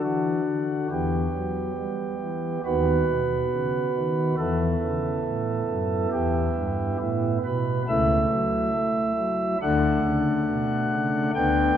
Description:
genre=classical, chorale-style piece for pipe organ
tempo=69 BPM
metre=4/4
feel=straight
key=D major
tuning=A4 = 445 Hz
part: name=pipe organ, flutes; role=solo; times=0.0-11.8 s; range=C#2 to G5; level=-22 LUFS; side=equal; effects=none
room=wet church reverb, RT60 2.8 s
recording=dark, warm production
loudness=-22 LUFS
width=side -9 dB against mid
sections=0.0-11.8 A section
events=none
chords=0.0 D; 0.9 Em; 2.6 B/D#; 4.4 Em; 7.9 A/C#; 9.6 D

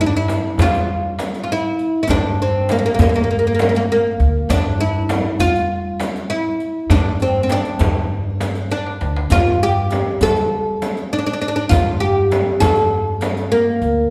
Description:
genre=Turkish makam ensemble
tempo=100 BPM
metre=4/4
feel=straight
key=G makam huseyni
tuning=A4 = 440 Hz
part: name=oud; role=melody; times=0.0-14.1 s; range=Bb3 to A4-30c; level=-20 LUFS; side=equal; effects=none
part: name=upright bass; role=bass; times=0.0-14.0 s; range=D2 to G3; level=-23 LUFS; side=equal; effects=none
part: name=darbuka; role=percussion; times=0.3-13.7 s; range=none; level=-27 LUFS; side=equal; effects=none
part: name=frame drum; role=percussion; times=0.3-13.4 s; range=none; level=-27 LUFS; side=equal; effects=none
part: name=riq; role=percussion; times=0.3-13.9 s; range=none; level=-35 LUFS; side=equal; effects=none
room=wet recital hall reverb, RT60 1.3 s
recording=heard from further back in the room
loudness=-18 LUFS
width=mono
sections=0.0-14.1 A section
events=drum fill 8.7-9.3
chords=none

